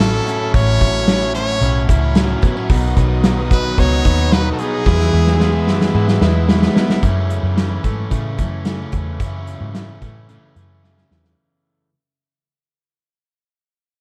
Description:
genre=jangly indie pop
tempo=111 BPM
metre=4/4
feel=straight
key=unclear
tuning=A4 = 440 Hz
part: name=brilliant trumpet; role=melody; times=0.0-6.2 s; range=G#4 to C#5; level=-24 LUFS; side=equal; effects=delay
part: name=crunchy overdriven guitar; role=accompaniment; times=0.0-11.9 s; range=F#2 to E4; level=-27 LUFS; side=equal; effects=none
part: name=dark studio string section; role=sustained chords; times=0.0-7.0 s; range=A4 to E6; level=-36 LUFS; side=equal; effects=none
part: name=direct-recorded clean electric guitar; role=arpeggios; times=0.0-11.9 s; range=F#2 to E4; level=-24 LUFS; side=equal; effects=none
part: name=vintage muted picked electric bass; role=bass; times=0.0-11.3 s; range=A1 to A2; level=-21 LUFS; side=equal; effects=none
part: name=loose indie drum kit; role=drums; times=0.0-11.4 s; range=hi-hat, kick drum, snare drum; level=-19 LUFS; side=equal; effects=none
room=light reverb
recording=dark, warm production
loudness=-16 LUFS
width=mono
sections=0.0-7.0 A section; 7.0-11.4 B section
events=drum fill 4.9-7.0, 10.8-11.4; fade-out 7.0-11.4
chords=0.0 A6; 2.7 B; 4.9 E; 7.0 F#m7

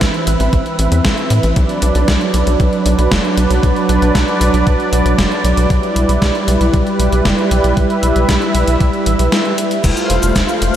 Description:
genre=synthwave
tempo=116 BPM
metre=4/4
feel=straight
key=unclear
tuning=A4 = 440 Hz
part: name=warm analog pad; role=sustained chords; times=0.0-10.8 s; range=E3 to F5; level=-15 LUFS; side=right 1 dB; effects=chorus, sidechain pumping
part: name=tight sequencer bass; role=bass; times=0.0-10.7 s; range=F1 to A2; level=-15 LUFS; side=equal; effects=none
part: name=electronic kick drum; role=drums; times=0.0-10.5 s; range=none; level=-17 LUFS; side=equal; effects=overdrive
part: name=gated 80s digital drum machine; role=drums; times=0.0-10.7 s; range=crash cymbal, hi-hat, shaker, snare drum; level=-20 LUFS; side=equal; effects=gated reverb, gated reverb snare, overdrive
room=moderate huge ambient reverb, RT60 7.6 s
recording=dreamy mix soaked in reverb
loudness=-12 LUFS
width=side -10 dB against mid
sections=0.0-9.8 A section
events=none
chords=0.0 Am; 1.6 Bm; 5.7 Em7; 9.8 F

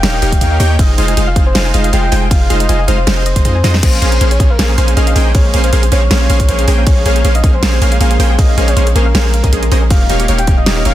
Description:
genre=future bass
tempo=158 BPM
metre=4/4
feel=swing 53% on 16ths, half-time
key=Bb dorian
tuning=A4 = 440 Hz
part: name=soft octave-layered synth lead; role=melody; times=0.0-10.9 s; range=Bb4 to G5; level=-20 LUFS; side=left 2 dB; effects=chorus, sidechain pumping, digital delay
part: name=soft round pluck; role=arpeggios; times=0.0-10.9 s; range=G4 to C6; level=-26 LUFS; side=left 5 dB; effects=chorus, sidechain pumping, dub echo
part: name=supersaw stab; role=riff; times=0.0-10.9 s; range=Ab3 to G5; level=-17 LUFS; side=right 1 dB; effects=sidechain pumping
part: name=warm 808-style bass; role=bass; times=0.0-10.9 s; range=Eb1 to F2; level=-13 LUFS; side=equal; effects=sidechain pumping
part: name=pop drum kit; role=drums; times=0.0-10.9 s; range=crash cymbal, hi-hat, snare drum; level=-20 LUFS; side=right 1 dB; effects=studio ambience
part: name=electronic kick drum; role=drums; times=0.3-10.6 s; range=none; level=-12 LUFS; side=equal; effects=studio ambience
part: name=ethereal airy pad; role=sustained chords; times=4.9-10.9 s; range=Eb3 to G4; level=-28 LUFS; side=right 1 dB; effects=none
room=little or no reverb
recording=dense, heavily limited modern master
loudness=-9 LUFS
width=side -13 dB against mid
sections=0.0-3.8 A section; 3.8-10.9 A section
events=drop 0.0-3.8, 3.8-10.9; drum fill 3.6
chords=0.0 Eb9; 0.8 Fm7; 3.8 Bbm9; 9.9 Eb9

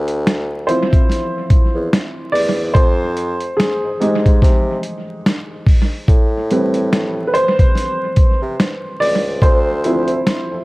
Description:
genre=lo-fi hip hop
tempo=72 BPM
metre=4/4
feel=swing 60% on 16ths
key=D dorian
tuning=A4 = 440 Hz
part: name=clear bassoon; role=bass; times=0.0-10.6 s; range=C#2 to C3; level=-20 LUFS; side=equal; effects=none
part: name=dusty soul sampler-style drum kit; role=drums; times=0.1-10.5 s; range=finger snaps, hi-hat, kick drum, snare drum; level=-14 LUFS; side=equal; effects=analog delay
part: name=warm upright piano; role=accompaniment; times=0.7-10.6 s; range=F3 to D5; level=-18 LUFS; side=equal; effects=cassette tape, low-pass filter
room=light reverb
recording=echo-heavy mix, vinyl crackle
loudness=-13 LUFS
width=side -21 dB against mid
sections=0.0-10.6 A section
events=upright piano solo 0.0-10.6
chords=0.0 Dm7; 2.8 Fm7; 6.1 Am7; 9.4 Dm7

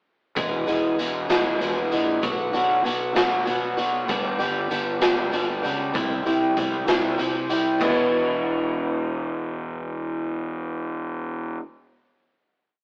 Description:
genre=quiet-loud alternative rock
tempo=65 BPM (dotted quarters)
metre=6/8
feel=straight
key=unclear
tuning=A4 = 439 Hz
part: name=picked swing-style acoustic guitar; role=arpeggios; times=0.4-11.6 s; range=E2 to G#4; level=-27 LUFS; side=equal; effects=none
part: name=fuzz fingered electric bass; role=bass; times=0.4-11.6 s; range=E1 to C3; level=-32 LUFS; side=equal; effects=overdrive
part: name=raw garage drum kit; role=drums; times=0.4-8.0 s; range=crash cymbal, hi-hat, kick drum, snare drum, toms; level=-29 LUFS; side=equal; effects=none
room=moderate stone room reverb, RT60 1.1 s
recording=rough rehearsal-room recording, warm saturation, AM radio sound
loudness=-24 LUFS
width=mono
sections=0.4-7.8 verse; 7.8-11.5 final chord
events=none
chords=0.4 E; 2.2 Bm; 4.1 G; 5.9 C; 7.8 E

